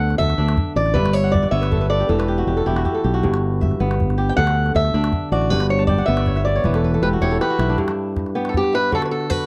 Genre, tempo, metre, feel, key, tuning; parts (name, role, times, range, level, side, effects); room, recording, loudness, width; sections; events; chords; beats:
west african traditional, West African string and xylophone music; 106 BPM (dotted quarters); 12/8; straight; G lydian; A4 = 440 Hz
fingerpicked swing-style acoustic guitar; melody; 0.0-9.5 s; G4 to G5; -24 LUFS; equal
kora; arpeggios; 0.0-9.5 s; G2 to A5; -25 LUFS; equal
fingered electric bass; bass; 0.0-7.8 s; E1 to D2; -22 LUFS; equal
calabash; percussion; 0.1-9.4 s; -27 LUFS; equal
little or no reverb; dry, close 1970s-style studio recording; -19 LUFS; mono
0.0-7.8 A section; 7.8-9.5 B section
steel-string acoustic guitar solo 0.0-7.8; kora fill 1.0-3.2, 5.8-7.8; drum fill 6.8-7.8
0.0 D5; 1.0 G; 2.1 E5; 3.2 G; 4.4 D; 5.5 G; 6.6 E5; 7.8 G; 8.9 D
0.39 | 0.96 1.53 2.10 2.66 | 3.23 3.80 4.37 4.94 | 5.51 6.08 6.65 7.22 | 7.79 8.36 8.92